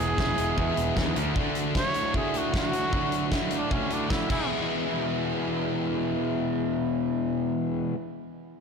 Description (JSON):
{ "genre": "indie rock", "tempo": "153 BPM", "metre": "4/4", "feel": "straight", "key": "unclear", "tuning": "A4 = 440 Hz", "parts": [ { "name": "breathy trumpet", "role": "melody", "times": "0.0-4.5 s", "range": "C#4 to C#5", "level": "-32 LUFS", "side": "right 2 dB", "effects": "digital delay" }, { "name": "biting overdriven guitar", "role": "riff", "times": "0.0-8.0 s", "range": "E2 to G#4", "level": "-29 LUFS", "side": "left 9 dB", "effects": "none" }, { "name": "biting overdriven guitar", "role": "riff", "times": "0.0-8.0 s", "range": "D3 to G#4", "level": "-30 LUFS", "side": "right 8 dB", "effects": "lush chorus, digital delay" }, { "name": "growling picked electric bass", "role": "bass", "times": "0.0-1.3 s", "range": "E1 to E2", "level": "-31 LUFS", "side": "equal", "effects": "overdrive" }, { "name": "big rock drum kit", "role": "drums", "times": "0.2-4.4 s", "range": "crash cymbal, hi-hat, kick drum, snare drum", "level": "-30 LUFS", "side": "equal", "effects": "soft clipping on snare" } ], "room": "moderate scoring stage reverb, RT60 2.0 s", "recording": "blown-out, overdriven recording, overdrive", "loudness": "-24 LUFS", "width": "side -5 dB against mid", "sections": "0.0-4.5 A section; 4.5-7.6 B section", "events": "trumpet solo 0.0-4.5", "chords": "0.0 E; 1.2 Dadd9; 4.3 E", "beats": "0.18 0.57 0.96 | 1.36 1.75 2.14 2.53 | 2.92 3.32 3.71 4.10 | 4.50 4.89 5.28 5.67 | 6.07 6.46 6.86 7.25" }